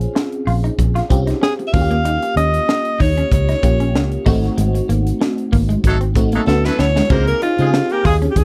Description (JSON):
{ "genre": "polished 1980s jazz-funk pop", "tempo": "95 BPM", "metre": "4/4", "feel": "swing 54% on 16ths", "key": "unclear", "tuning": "A4 = 440 Hz", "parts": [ { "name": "FM electric piano", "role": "accompaniment", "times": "0.0-8.4 s", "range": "A3 to Ab4", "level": "-24 LUFS", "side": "equal", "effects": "ensemble chorus" }, { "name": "vintage muted fingered electric bass", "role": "bass", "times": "0.0-8.4 s", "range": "Ab1 to Db3", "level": "-20 LUFS", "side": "equal", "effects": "none" }, { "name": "crisp fusion drum kit", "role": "drums", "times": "0.0-8.4 s", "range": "crash cymbal, hi-hat, kick drum, snare drum", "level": "-21 LUFS", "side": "equal", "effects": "none" }, { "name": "electric guitar through a small old amp", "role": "riff", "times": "0.2-8.3 s", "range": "Ab3 to F4", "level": "-26 LUFS", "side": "equal", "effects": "analog chorus" }, { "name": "clear alto saxophone", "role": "melody", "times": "1.4-8.4 s", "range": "F4 to F5", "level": "-22 LUFS", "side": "equal", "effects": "none" }, { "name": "warm horn section", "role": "second line", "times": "5.8-8.2 s", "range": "Gb3 to Bb4", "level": "-26 LUFS", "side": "equal", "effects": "none" } ], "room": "little or no reverb", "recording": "none", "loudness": "-16 LUFS", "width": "mono", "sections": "0.0-7.1 A section; 7.1-8.4 B section", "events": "band accent 4.6-7.1; drum fill 6.5-7.1", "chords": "0.0 Bbm9; 1.7 Eb9; 4.3 Ab7b9; 6.5 Dmaj13; 7.1 Dbmaj9", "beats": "0.15 0.79 1.42 | 2.05 2.68 3.32 3.95 | 4.58 5.21 5.84 6.47 | 7.10 7.73 8.36" }